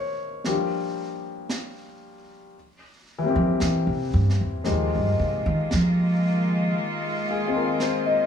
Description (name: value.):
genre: jazz ballad.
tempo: 57 BPM.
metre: 4/4.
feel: swing 66% on 8ths.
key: unclear.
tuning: A4 = 441 Hz.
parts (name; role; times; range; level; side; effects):
warm grand piano; accompaniment; 0.0-8.3 s; Eb3 to Eb5; -26 LUFS; left 4 dB; none.
brushed snare drum and snare drum; drums; 0.4-8.3 s; none; -34 LUFS; right 2 dB; none.
upright bass; bass; 3.4-6.7 s; Eb2 to F3; -22 LUFS; right 1 dB; none.
rich chamber cello section; sustained chords; 4.6-8.3 s; Eb3 to F4; -28 LUFS; equal; none.
room: light reverb.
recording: small room reverb.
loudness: -22 LUFS.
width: side -8 dB against mid.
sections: 0.0-8.3 A section.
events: upright bass solo 0.0-8.3.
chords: 0.4 Gm7; 2.5 C7; 4.7 Fm11.